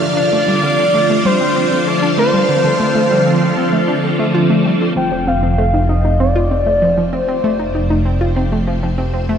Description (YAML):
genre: ambient, sequencer-driven space music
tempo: 97 BPM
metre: 4/4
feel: straight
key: unclear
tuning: A4 = 436 Hz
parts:
  - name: pulse-width lead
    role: melody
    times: 0.0-8.1 s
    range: C5 to G5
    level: -17 LUFS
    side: equal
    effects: chorus, shimmer reverb, ping-pong delay
  - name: phased string machine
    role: sustained chords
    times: 0.0-9.4 s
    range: D3 to F5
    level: -18 LUFS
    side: equal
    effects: ensemble chorus, phaser, shimmer reverb
  - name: analog pluck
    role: riff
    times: 0.0-9.4 s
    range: D3 to A4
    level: -19 LUFS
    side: equal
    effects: chorus, shimmer reverb, ping-pong delay
  - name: wind-like tuned noise texture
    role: texture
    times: 0.0-9.4 s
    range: D4 to G5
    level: -28 LUFS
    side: right 3 dB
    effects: none
  - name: fat analog bass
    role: bass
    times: 5.0-9.4 s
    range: F1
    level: -18 LUFS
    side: equal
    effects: none
room: wet cathedral reverb, RT60 4.7 s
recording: in a vast, echoing space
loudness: -12 LUFS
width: side -8 dB against mid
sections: 0.0-5.0 A section; 5.0-9.4 B section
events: fade-in on string machine 5.0-9.4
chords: 0.0 Dm7; 5.0 Fadd9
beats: | 0.01 0.63 1.25 1.87 | 2.49 3.11 3.73 4.34 | 4.96 5.58 6.20 6.82 | 7.44 8.06 8.68 9.29